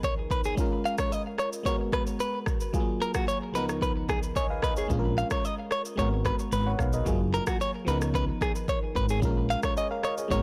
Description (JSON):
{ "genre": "afrobeats", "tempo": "111 BPM", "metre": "4/4", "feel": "straight", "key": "unclear", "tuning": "A4 = 440 Hz", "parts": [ { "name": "FM electric piano", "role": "accompaniment", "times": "0.0-10.4 s", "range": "C#2 to G#5", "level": "-34 LUFS", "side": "equal", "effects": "chorus" }, { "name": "direct-recorded clean electric guitar", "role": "riff", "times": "0.0-10.4 s", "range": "F#4 to E#5", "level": "-33 LUFS", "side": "equal", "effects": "tape echo" }, { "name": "afro-pop drum kit", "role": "drums", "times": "0.0-10.4 s", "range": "kick drum, rim click, shaker", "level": "-33 LUFS", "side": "equal", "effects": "soft clipping on snare" }, { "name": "woody fretless electric bass", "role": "bass", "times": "4.9-10.4 s", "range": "F#1 to C#2", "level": "-31 LUFS", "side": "equal", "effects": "none" } ], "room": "little or no reverb", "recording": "blown-out, overdriven recording, overdrive", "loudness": "-28 LUFS", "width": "mono", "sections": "0.0-10.4 A section", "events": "none", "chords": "0.0 C#13; 0.6 A#m7; 1.7 G#m9; 2.7 F#maj9; 3.5 C#13; 4.9 A#m7; 6.0 G#m9; 7.1 F#maj9; 7.9 C#13; 9.2 A#m7", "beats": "0.04 | 0.58 1.12 1.66 2.20 | 2.74 3.28 3.82 4.36 | 4.90 5.44 5.98 6.52 | 7.06 7.60 8.14 8.68 | 9.22 9.77 10.31" }